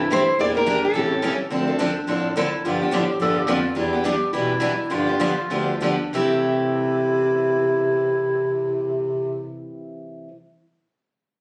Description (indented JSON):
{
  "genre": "acoustic string swing (jazz manouche)",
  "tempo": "182-215 BPM",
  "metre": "4/4",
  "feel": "swing 58% on 8ths",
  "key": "C major",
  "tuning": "A4 = 440 Hz",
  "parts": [
    { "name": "growling clarinet", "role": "second line", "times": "0.0-9.6 s", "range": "C4 to A4", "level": "-29 LUFS", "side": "equal", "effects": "none" },
    { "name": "picked steel-string acoustic guitar", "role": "accompaniment", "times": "0.0-10.3 s", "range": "C3 to A4", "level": "-28 LUFS", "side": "equal", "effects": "none" },
    { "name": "picked steel-string acoustic guitar", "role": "accompaniment", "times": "0.0-10.3 s", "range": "C3 to B4", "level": "-31 LUFS", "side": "equal", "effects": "none" },
    { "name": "mellow bass clarinet", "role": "bass", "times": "0.0-9.5 s", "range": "D2 to C3", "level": "-26 LUFS", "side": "equal", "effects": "none" },
    { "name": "picked steel-string acoustic guitar", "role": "melody", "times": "0.1-1.4 s", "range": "A4 to D5", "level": "-24 LUFS", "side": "equal", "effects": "none" }
  ],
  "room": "moderate studio reverb, RT60 0.6 s",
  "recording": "recorded on a phone in the room, studio reverb, compression",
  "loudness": "-22 LUFS",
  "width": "mono",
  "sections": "0.0-1.5 A section; 1.5-6.1 B section; 6.1-8.8 C section",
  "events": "slowing down 3.8-6.1",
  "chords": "0.4 Em7b5; 1.0 A7; 1.5 Dm9; 2.6 G7; 3.8 Em7; 4.9 G7; 6.1 C6"
}